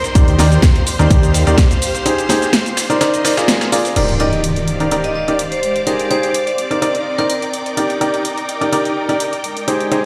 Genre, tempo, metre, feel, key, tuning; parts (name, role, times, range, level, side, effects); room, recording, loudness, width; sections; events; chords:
piano house; 126 BPM; 4/4; swing 53% on 16ths; Eb major; A4 = 440 Hz
string machine, violins; sustained chords; 0.0-10.1 s; C5 to D6; -28 LUFS; equal; ensemble chorus, sidechain pumping
dusty soul sampler-style drum kit; drums; 0.0-4.0 s; hi-hat, snare drum; -28 LUFS; equal
house drum kit; drums; 0.0-10.0 s; crash cymbal, hi-hat, shaker, snare drum; -23 LUFS; equal
bright symphonic string section; texture; 0.0-10.1 s; Eb3 to G5; -28 LUFS; equal; sidechain pumping
clear upright piano; riff; 0.2-10.1 s; Eb4 to D5; -20 LUFS; equal; sidechain pumping, tape echo
fat analog bass; bass; 0.2-1.6 s; Eb2; -15 LUFS; equal; sidechain pumping
electronic kick drum; drums; 0.2-1.7 s; -13 LUFS; equal
impact; sound effects; 4.0-5.9 s; -23 LUFS; equal
vibraphone with hard mallets; melody; 4.2-7.4 s; Bb4 to Eb5; -24 LUFS; equal; tape echo
moderate plate reverb, RT60 2.1 s; played on a big sound system in a bare room, large studio reverb; -16 LUFS; mono
0.0-4.0 A section; 4.0-10.1 B section
break 2.1-4.0; band accent 3.5; impact 4.0-5.9
0.2 Ebmaj7; 1.8 Abmaj7; 2.8 Cm9; 3.5 Bb7; 4.0 Ebmaj7; 5.6 Abmaj7; 6.6 Cm9; 7.8 Ebmaj7; 9.4 Abmaj7